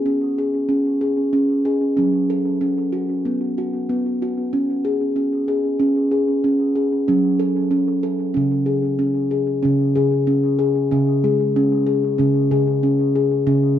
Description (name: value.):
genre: world meditative.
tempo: 94 BPM.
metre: 4/4.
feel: swing 55% on 16ths.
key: unclear.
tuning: A4 = 440 Hz.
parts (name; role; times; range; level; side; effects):
steel tongue drum; solo; 0.0-13.8 s; C#3 to A4; -17 LUFS; equal; analog delay.
room: wet spring reverb, RT60 1.7 s, small room reverb.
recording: echo-heavy mix.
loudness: -17 LUFS.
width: side -10 dB against mid.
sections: 0.0-9.6 A section; 9.6-13.8 B section.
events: none.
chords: 0.0 C#5; 2.0 F#m; 3.3 B5; 4.5 C#5; 7.1 F#m; 8.4 C#5.